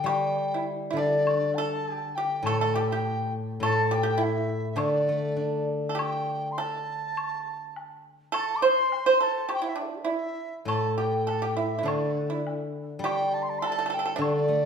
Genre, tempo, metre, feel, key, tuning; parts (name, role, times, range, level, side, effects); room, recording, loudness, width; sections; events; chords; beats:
chinese traditional, Chinese chamber ensemble; 102 BPM; 2/4; rubato; D shang mode; A4 = 440 Hz
mellow large dizi; melody; 0.0-14.7 s; D4 to D6; -29 LUFS; equal
pipa; second line; 0.0-14.7 s; D4 to C5; -29 LUFS; right 3 dB
steel-string zither; accompaniment; 0.0-6.6, 10.7-14.7 s; A2 to D4; -28 LUFS; left 1 dB
woodblock; percussion; 0.1-14.3 s; -36 LUFS; left 2 dB
wet recital hall reverb, RT60 1.3 s; minimal, uncompressed stereo recording; -24 LUFS; side -6 dB against mid
0.0-6.0 A section; 6.0-14.7 B section
| 0.06 0.66 | 1.26 1.86 | 2.45 3.04 | 3.62 4.20 | 4.78 5.37 | 5.98 6.58 | 7.17 7.76 | 8.34 8.92 | 9.50 10.09 | 10.69 11.28 | 11.87 12.46 | 13.04 13.62 | 14.21